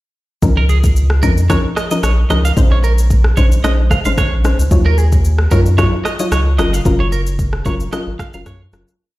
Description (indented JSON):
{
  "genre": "afrobeats",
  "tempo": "112 BPM",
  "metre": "4/4",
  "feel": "swing 55% on 16ths",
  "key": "Db major",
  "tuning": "A4 = 440 Hz",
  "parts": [
    { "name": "soft round pluck", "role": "accompaniment", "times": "0.4-8.9 s", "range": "F3 to Db5", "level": "-20 LUFS", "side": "left 2 dB", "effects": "chorus" },
    { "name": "round analog bass", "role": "bass", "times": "0.4-8.8 s", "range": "Gb1 to Gb2", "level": "-14 LUFS", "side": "equal", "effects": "none" },
    { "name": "afro-pop drum kit", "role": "drums", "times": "0.4-9.0 s", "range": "kick drum, rim click, shaker", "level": "-17 LUFS", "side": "equal", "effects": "none" },
    { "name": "twelve-string electric guitar", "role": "riff", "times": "0.6-8.6 s", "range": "Ab4 to F5", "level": "-22 LUFS", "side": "right 5 dB", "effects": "digital delay" }
  ],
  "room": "little or no reverb",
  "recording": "played on a big sound system in a bare room, stone room reverb",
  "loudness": "-12 LUFS",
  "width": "side -18 dB against mid",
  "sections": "0.4-9.0 verse",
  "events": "fade-out 6.9-9.0",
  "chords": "0.4 Db69; 2.6 Bbm11; 4.7 Ebm9; 6.6 Gbmaj7",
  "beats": "| 0.42 0.96 1.50 2.03 | 2.57 3.10 3.64 4.17 | 4.71 5.25 5.78 6.32 | 6.85 7.39 7.92 8.46"
}